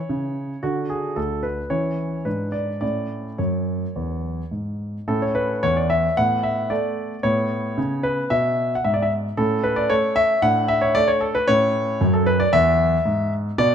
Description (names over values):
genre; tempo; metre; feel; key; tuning
classical-period piano sonatina; 112 BPM; 4/4; rubato; A major; A4 = 438 Hz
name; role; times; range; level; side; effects
warm grand piano; solo; 0.0-13.7 s; D2 to F#5; -19 LUFS; equal; none
room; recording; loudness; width
moderate recital hall reverb, RT60 1.8 s; close, detailed microphones; -19 LUFS; side -8 dB against mid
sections
0.0-5.1 A section; 5.1-13.7 A section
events
none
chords
0.0 N.C.; 1.7 C#m/E; 2.3 G#dim; 2.8 A; 6.2 Bm7/A; 7.2 Amaj9; 9.4 A; 10.4 D5/A; 11.5 A